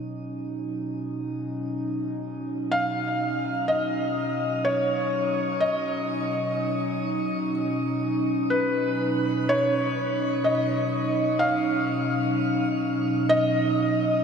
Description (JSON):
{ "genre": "ambient", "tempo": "63 BPM", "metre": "4/4", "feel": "straight", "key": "B lydian", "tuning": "A4 = 441 Hz", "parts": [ { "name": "warbly tape-like pad", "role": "sustained chords", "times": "0.0-14.2 s", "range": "B2 to D#4", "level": "-26 LUFS", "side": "right 1 dB", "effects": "chorus, built-in reverb" }, { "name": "felt-muted upright piano", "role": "melody", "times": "2.7-14.2 s", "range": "B4 to E#5", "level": "-25 LUFS", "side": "left 1 dB", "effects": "tape echo" } ], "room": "wet shimmer reverb, RT60 8.1 s", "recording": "none", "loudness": "-23 LUFS", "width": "side -6 dB against mid", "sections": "0.0-9.5 A section; 9.5-14.2 B section", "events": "none", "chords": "0.0 Badd9" }